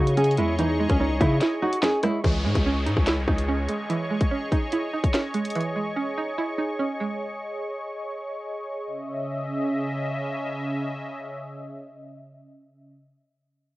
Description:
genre	hip hop, drill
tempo	145 BPM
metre	4/4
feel	half-time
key	C# minor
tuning	A4 = 441 Hz
part	nylon-string guitar	melody	0.0-2.2 s	C#4 to G#4	-25 LUFS	equal	low-pass filter, cassette tape, tape echo
part	string-like resonator pluck	accompaniment	0.0-8.0 s	E3 to E4	-28 LUFS	right 3 dB	chorus, low-pass filter, cassette tape
part	sweeping resonant pad	sustained chords	0.0-12.9 s	C#3 to C#6	-30 LUFS	equal	chorus, cassette tape
part	hard-hitting 808-style bass	bass	0.0-3.7 s	B#1 to C#3	-24 LUFS	left 1 dB	none
part	drill drum kit	drums	0.1-5.7 s	finger snaps, hi-hat, kick drum, rim click, snare drum	-24 LUFS	left 1 dB	cassette tape
part	downlifter	sound effects	2.2-5.6 s	none	-37 LUFS	left 1 dB	none
room	little or no reverb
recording	home recording on cassette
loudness	-23 LUFS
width	side -18 dB against mid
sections	0.0-2.2 A section; 2.2-8.9 B section; 8.9-12.2 C section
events	kick muted 1.4-2.2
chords	0.0 C#madd9

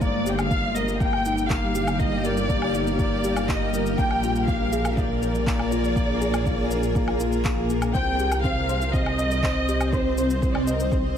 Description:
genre	piano and strings electronica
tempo	121 BPM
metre	4/4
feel	straight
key	unclear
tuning	A4 = 439 Hz
part	dark studio violin section	melody	0.0-10.9 s	Bb4 to G5	-28 LUFS	left 1 dB	shimmer reverb
part	granular cloud pad	sustained chords	0.0-11.2 s	G3 to F5	-29 LUFS	left 1 dB	built-in reverb, sidechain pumping, shimmer reverb
part	felt-muted upright piano	riff	0.0-11.2 s	Bb3 to Eb5	-27 LUFS	left 1 dB	shimmer reverb
part	dark detuned saw bass	bass	0.0-11.2 s	G1 to C2	-28 LUFS	equal	sidechain pumping
part	electronic kick drum	drums	0.0-11.0 s	none	-26 LUFS	equal	none
part	electronic shaker, woodblock and handclaps	drums	0.0-11.0 s	none	-33 LUFS	left 1 dB	none
room	light reverb, digital ambience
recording	none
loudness	-21 LUFS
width	side -9 dB against mid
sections	0.0-11.2 A section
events	none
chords	0.0 Ebmaj7/G; 4.0 Bb7; 7.9 Cm

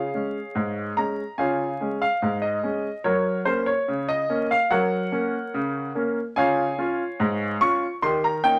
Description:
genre	ragtime piano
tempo	72 BPM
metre	2/4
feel	straight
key	Db major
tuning	A4 = 440 Hz
part	clear grand piano	solo	0.0-8.6 s	Ab2 to Db6	-24 LUFS	equal	none
room	moderate small room reverb, RT60 0.5 s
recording	vinyl crackle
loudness	-24 LUFS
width	mono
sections	0.0-8.6 A section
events	none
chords	0.0 Db; 3.0 Gb; 6.4 Db; 8.0 Eb7

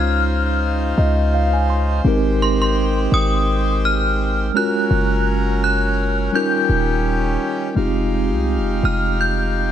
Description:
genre	contemporary R&B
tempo	84 BPM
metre	4/4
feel	swing 54% on 16ths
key	Ab major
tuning	A4 = 440 Hz
part	synth chime	melody	0.0-9.7 s	C6 to G6	-22 LUFS	left 1 dB	ensemble chorus, phaser, ping-pong delay
part	mellow tine electric piano	accompaniment	0.0-9.7 s	G3 to C6	-21 LUFS	right 1 dB	medium stereo tremolo
part	accordion	sustained chords	0.0-9.7 s	Db3 to F5	-26 LUFS	left 2 dB	none
part	warm 808-style bass	bass	0.0-9.7 s	Eb1 to Db2	-19 LUFS	equal	none
room	light reverb, digital ambience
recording	none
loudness	-16 LUFS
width	side -10 dB against mid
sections	0.0-7.8 A section; 7.8-9.7 B section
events	tine electric piano fill 0.6-2.0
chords	0.0 Dbmaj9; 2.0 Abmaj7; 4.5 Gbmaj7; 6.3 Eb9; 7.8 Fm9

